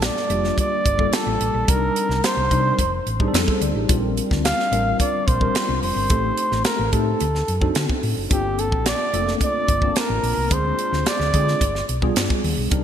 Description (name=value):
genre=polished 1980s jazz-funk pop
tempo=109 BPM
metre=4/4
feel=straight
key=G minor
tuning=A4 = 439 Hz
part: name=breathy flugelhorn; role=melody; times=0.0-11.9 s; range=G4 to F5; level=-23 LUFS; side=right 1 dB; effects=ping-pong delay
part: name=mellow tine electric piano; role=accompaniment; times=0.0-12.8 s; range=G3 to A5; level=-25 LUFS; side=left 2 dB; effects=medium stereo tremolo, analog chorus
part: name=hollow-body short-scale fingered electric bass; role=bass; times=0.0-12.8 s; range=F1 to D3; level=-24 LUFS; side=equal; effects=none
part: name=crisp fusion drum kit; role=drums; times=0.0-12.8 s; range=hi-hat, kick drum, snare drum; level=-23 LUFS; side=equal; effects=gated reverb
room=moderate lush hall reverb, RT60 2.6 s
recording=bright 1980s-style digital production, lossy compression artefacts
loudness=-18 LUFS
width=side -9 dB against mid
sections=0.0-12.8 A section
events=none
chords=0.0 Gm9; 1.7 Cm9; 2.8 F13; 3.9 Bb69; 6.1 Am7b5; 7.2 D7b9; 8.3 Gm11; 10.5 Dm7b5; 11.6 G7b9